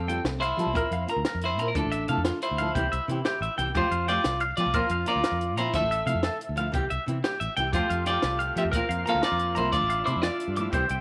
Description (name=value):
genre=highlife guitar band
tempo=120 BPM (dotted quarters)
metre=12/8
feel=straight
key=F major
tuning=A4 = 439 Hz
part: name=clean electric guitar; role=melody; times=0.0-10.9 s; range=C4 to F5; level=-30 LUFS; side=equal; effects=none
part: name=semi-hollow electric guitar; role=arpeggios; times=0.0-11.0 s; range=F4 to D6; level=-33 LUFS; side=equal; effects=phaser, slapback echo
part: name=fingered electric bass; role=bass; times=0.0-11.0 s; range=A1 to F3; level=-34 LUFS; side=equal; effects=none
part: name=flamenco guitar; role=accompaniment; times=0.1-10.8 s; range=E3 to Bb4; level=-35 LUFS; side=equal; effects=none
part: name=compact cocktail drum kit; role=drums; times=0.1-11.0 s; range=hi-hat, kick drum, snare drum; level=-34 LUFS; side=equal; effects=none
part: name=combo organ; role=sustained chords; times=7.8-11.0 s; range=A3 to E5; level=-40 LUFS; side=equal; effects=none
room=light reverb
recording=none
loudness=-27 LUFS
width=mono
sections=0.0-11.0 A section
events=none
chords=0.0 Fadd9; 0.8 Bbsus2; 1.8 Dmadd9; 2.7 C; 3.7 Fadd9; 4.7 Bbsus2; 5.7 Dmadd9; 6.7 C; 7.7 Fadd9; 8.7 Bbsus2; 9.7 Dmadd9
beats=0.26 0.75 1.25 | 1.75 2.25 2.75 3.25 | 3.74 4.24 4.74 5.24 | 5.74 6.24 6.73 7.23 | 7.73 8.23 8.73 9.23 | 9.73 10.23 10.73